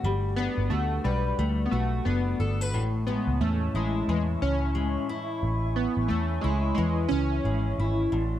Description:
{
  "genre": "indie pop",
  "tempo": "89 BPM",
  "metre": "4/4",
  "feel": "swing 60% on 16ths",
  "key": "A major",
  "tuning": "A4 = 440 Hz",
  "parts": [
    { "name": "fingerpicked steel-string acoustic guitar", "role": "accompaniment", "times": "0.0-8.4 s", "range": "A2 to B4", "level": "-30 LUFS", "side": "left 3 dB", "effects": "lush chorus, warbly pitch drift" },
    { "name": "vintage muted picked electric bass", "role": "bass", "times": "0.0-8.4 s", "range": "F#1 to E2", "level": "-27 LUFS", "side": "equal", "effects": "none" },
    { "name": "chorused retro synth keys", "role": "melody", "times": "0.4-7.7 s", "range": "G3 to C#4", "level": "-30 LUFS", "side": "equal", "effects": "analog chorus, analog delay" },
    { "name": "large flute ensemble", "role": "sustained chords", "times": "2.7-8.4 s", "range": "E4 to C#6", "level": "-38 LUFS", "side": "right 1 dB", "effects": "none" }
  ],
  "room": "light reverb, small room ambience",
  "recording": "dark, warm production",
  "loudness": "-24 LUFS",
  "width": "side -12 dB against mid",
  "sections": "0.0-8.4 A section",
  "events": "none",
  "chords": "0.0 Gmaj9; 2.7 Amaj7"
}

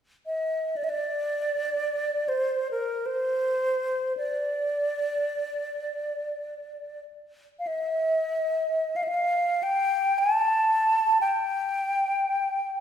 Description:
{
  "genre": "arabic",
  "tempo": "free time",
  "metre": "none",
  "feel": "none",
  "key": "D maqam bayati",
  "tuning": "A4 = 440 Hz",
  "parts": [
    { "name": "mellow hollow silver concert flute", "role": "melody", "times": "0.3-12.8 s", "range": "Bb4 to A5", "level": "-24 LUFS", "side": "equal", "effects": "none" }
  ],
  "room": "wet recital hall reverb, RT60 1.7 s",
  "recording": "recorded in a church or concert hall",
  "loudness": "-24 LUFS",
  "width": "side -9 dB against mid",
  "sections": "0.0-12.8 A section",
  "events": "none",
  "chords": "none"
}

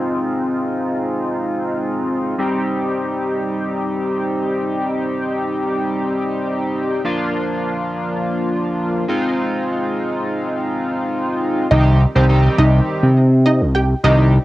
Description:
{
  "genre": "dance-pop",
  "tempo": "free time",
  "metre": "none",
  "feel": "none",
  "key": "C minor",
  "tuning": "A4 = 440 Hz",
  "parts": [
    { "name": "chorused polysynth", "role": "accompaniment", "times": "0.0-14.3 s", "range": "Eb3 to G4", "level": "-19 LUFS", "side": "equal", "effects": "low-pass filter, cassette tape" },
    { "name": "wide unison pluck", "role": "melody", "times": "11.7-14.2 s", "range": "C4 to G5", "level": "-19 LUFS", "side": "right 1 dB", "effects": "none" },
    { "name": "fat analog bass", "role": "bass", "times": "11.7-14.4 s", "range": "C2 to C3", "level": "-12 LUFS", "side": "equal", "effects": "none" }
  ],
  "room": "light reverb",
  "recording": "home recording on cassette",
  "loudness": "-16 LUFS",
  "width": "side -16 dB against mid",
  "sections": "0.0-11.7 A section; 11.7-14.4 B section",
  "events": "filter sweep on analog polysynth 0.0-11.7; drop 11.7-14.4",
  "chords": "0.0 Fm7/Ab; 2.4 Cm; 7.0 Bb; 9.1 Fm7/Ab; 11.7 Cm"
}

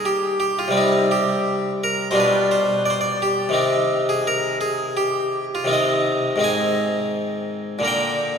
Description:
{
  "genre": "classical, baroque-style suite movement for harpsichord",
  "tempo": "85 BPM",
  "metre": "4/4",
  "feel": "rubato",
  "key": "unclear",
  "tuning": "A4 = 440 Hz",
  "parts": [
    { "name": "harpsichord", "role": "solo", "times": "0.0-8.4 s", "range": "Ab2 to Ab5", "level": "-18 LUFS", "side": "equal", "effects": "none" }
  ],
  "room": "wet church reverb, RT60 2.7 s",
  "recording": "minimal, uncompressed stereo recording",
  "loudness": "-18 LUFS",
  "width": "side -6 dB against mid",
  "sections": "0.0-8.4 A section",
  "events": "none",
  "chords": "0.0 Eb; 0.8 C5; 2.2 G7/B; 3.6 Cm; 6.4 Ab; 7.9 Bb"
}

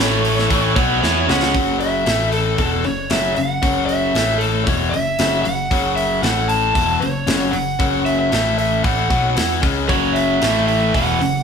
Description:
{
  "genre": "hard rock",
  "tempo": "115 BPM",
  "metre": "4/4",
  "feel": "straight",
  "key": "F# minor",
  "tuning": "A4 = 440 Hz",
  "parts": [
    { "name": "lead guitar through a small cranked amp", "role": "melody", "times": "0.0-11.4 s", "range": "A4 to A5", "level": "-21 LUFS", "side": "right 2 dB", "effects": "overdrive" },
    { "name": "cranked stack guitar", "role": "riff", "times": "0.0-11.4 s", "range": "E2 to E4", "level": "-19 LUFS", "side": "left 5 dB", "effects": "overdrive" },
    { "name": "tight distorted guitar", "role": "riff", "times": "0.0-1.5, 9.9-11.4 s", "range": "E2 to E4", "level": "-21 LUFS", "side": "right 10 dB", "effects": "distortion" },
    { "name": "picked electric bass", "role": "bass", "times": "0.0-11.4 s", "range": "E1 to E2", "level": "-24 LUFS", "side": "right 1 dB", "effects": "none" },
    { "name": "tight metal drum kit", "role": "drums", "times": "0.2-11.3 s", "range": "hi-hat, kick drum, snare drum", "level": "-23 LUFS", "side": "right 1 dB", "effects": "none" }
  ],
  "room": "moderate large studio reverb, RT60 1.1 s",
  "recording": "band playing live in one room",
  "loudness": "-15 LUFS",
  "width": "side -6 dB against mid",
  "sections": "0.0-1.5 A section; 1.5-11.4 B section",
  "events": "lead electric guitar solo 0.0-1.5; drum fill 1.0-1.5",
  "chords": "0.0 A5; 0.5 F#m; 1.5 F#5; 2.1 A5; 2.6 F#5; 4.1 A5; 4.7 F#5; 6.2 A5; 6.8 F#5; 8.3 A5; 8.8 F#m; 10.4 A5"
}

